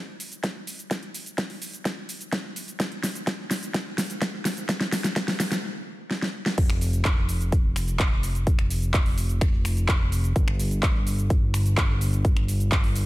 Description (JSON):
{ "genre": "EDM, festival progressive house", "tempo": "127 BPM", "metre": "4/4", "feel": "straight", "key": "unclear", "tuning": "A4 = 440 Hz", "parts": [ { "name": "big-room dance drum kit", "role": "drums", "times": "0.2-13.1 s", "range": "cabasa, crash cymbal, finger snaps, handclaps, hi-hat, snare drum", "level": "-28 LUFS", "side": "equal", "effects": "overdrive" }, { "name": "electronic kick drum", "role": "drums", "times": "0.4-12.8 s", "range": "none", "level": "-22 LUFS", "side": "equal", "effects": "high-pass filter on kick" }, { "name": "fat analog bass", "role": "bass", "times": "6.6-13.1 s", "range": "F1 to G1", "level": "-25 LUFS", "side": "equal", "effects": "sidechain pumping" } ], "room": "light reverb, digital ambience", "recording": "none", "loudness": "-23 LUFS", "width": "side -18 dB against mid", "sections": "0.0-6.6 A section; 6.6-13.1 B section", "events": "build-up 0.0-6.6; drum fill 0.0-5.6, 6.1-6.6; stop 5.6-6.6; drop 6.6-13.1", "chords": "none", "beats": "0.44 | 0.91 1.38 1.85 2.33 | 2.80 3.27 3.74 4.22 | 4.69 5.16 5.63 6.11 | 6.58 7.05 7.52 8.00 | 8.47 8.94 9.41 9.88 | 10.36 10.83 11.30 11.78 | 12.25 12.72" }